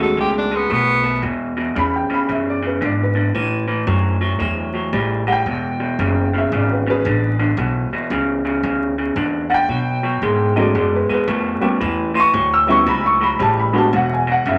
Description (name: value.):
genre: electric blues shuffle.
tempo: 114 BPM.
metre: 4/4.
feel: swing 64% on 8ths.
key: E mixolydian.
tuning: A4 = 440 Hz.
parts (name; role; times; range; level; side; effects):
clear tenor saxophone; melody; 0.0-1.2 s; B3 to A4; -21 LUFS; equal; none.
dark upright piano; accompaniment; 0.0-14.6 s; F#3 to E6; -21 LUFS; equal; none.
electric guitar through a small old amp; riff; 0.0-14.6 s; E2 to A3; -22 LUFS; equal; none.
upright bass; bass; 0.0-14.6 s; E1 to B2; -25 LUFS; equal; none.
room: wet large studio reverb, RT60 0.9 s.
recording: vinyl crackle.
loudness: -18 LUFS.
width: mono.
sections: 0.0-1.2 A section; 1.2-14.6 B section.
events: none.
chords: 0.0 B7; 1.2 E7; 3.3 A5; 5.5 E7; 9.7 B7(no3); 11.8 A7; 13.9 E.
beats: 0.17 0.70 | 1.23 1.76 2.29 2.82 | 3.35 3.88 4.40 4.93 | 5.46 5.99 6.52 7.05 | 7.58 8.10 8.63 9.16 | 9.69 10.22 10.75 11.28 | 11.81 12.34 12.87 13.40 | 13.93 14.45.